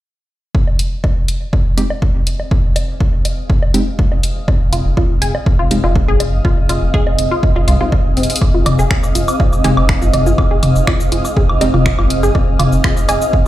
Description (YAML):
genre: minimal techno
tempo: 122 BPM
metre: 4/4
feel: straight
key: F minor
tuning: A4 = 440 Hz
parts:
  - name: electronic kick drum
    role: drums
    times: 0.5-13.4 s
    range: none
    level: -15 LUFS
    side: equal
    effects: none
  - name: granular cloud pad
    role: texture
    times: 2.0-13.5 s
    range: C4 to F5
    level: -21 LUFS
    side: right 1 dB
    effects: built-in reverb, sidechain pumping
  - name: electronic woodblock and toms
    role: percussion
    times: 0.7-13.2 s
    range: none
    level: -20 LUFS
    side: equal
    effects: tape echo
  - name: house drum kit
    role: drums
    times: 0.8-13.3 s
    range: finger snaps, hi-hat, shaker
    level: -21 LUFS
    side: left 1 dB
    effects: none
  - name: wavetable chord stab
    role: stabs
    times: 1.8-11.7 s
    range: Ab3 to G4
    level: -21 LUFS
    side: right 1 dB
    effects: tape echo
  - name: resonant blip pluck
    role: riff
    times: 4.7-13.2 s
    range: C4 to Ab4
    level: -21 LUFS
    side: left 1 dB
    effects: chorus, phaser, sidechain pumping, tape echo
  - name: saturated sub bass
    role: bass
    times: 4.7-13.2 s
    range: F1 to C2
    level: -16 LUFS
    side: equal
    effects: sidechain pumping
room: light reverb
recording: played on a big sound system in a bare room, large studio reverb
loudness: -12 LUFS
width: side -14 dB against mid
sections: 0.5-8.4 A section; 8.4-13.5 B section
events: fade-in on ambient pad 0.5-8.4; drum fill 8.2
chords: 0.5 Fm7